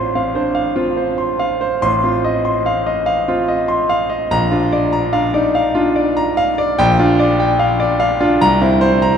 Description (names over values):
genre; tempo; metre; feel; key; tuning
classical, romantic character piece for solo piano; 73 BPM; 3/4; rubato; Bb major; A4 = 440 Hz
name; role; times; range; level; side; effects
bright concert grand piano; solo; 0.0-9.2 s; A1 to C6; -13 LUFS; equal; none
room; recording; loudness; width
wet cathedral reverb, RT60 6.3 s; in a vast, echoing space; -13 LUFS; side -7 dB against mid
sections
0.0-9.2 A section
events
none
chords
0.0 F/A; 1.8 F7/A; 4.3 Bb; 6.8 Gm7/Bb; 8.4 C7